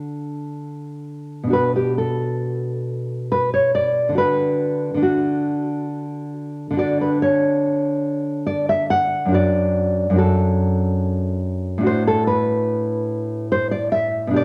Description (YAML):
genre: romantic piece for solo classical guitar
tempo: 70 BPM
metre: 3/4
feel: uneven beats, rubato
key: B minor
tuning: A4 = 438 Hz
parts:
  - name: nylon-string guitar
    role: solo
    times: 0.0-14.4 s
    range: F#2 to F#5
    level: -21 LUFS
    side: equal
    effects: none
room: moderate large studio reverb, RT60 1.2 s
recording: none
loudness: -20 LUFS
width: mono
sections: 0.0-1.5 A section; 1.5-14.4 B section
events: none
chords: 0.0 D; 1.5 Bm; 4.2 Bm/D; 9.3 D/F#; 11.8 D/A